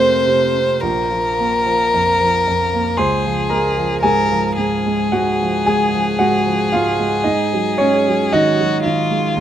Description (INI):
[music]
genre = classical, romantic duo for violin and grand piano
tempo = 56 BPM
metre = 4/4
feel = rubato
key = unclear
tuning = A4 = 440 Hz
[part]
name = rich violin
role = melody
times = 0.0-9.4 s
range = F4 to C5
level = -18 LUFS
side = left 2 dB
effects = none
[part]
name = warm concert grand piano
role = accompaniment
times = 0.0-9.4 s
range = Bb1 to C6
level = -17 LUFS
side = right 2 dB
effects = none
[sound]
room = light reverb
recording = close, detailed microphones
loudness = -14 LUFS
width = side -10 dB against mid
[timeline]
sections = 0.0-9.4 A section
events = none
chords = 0.0 F; 0.8 Bb5; 3.0 Db; 7.3 Ab5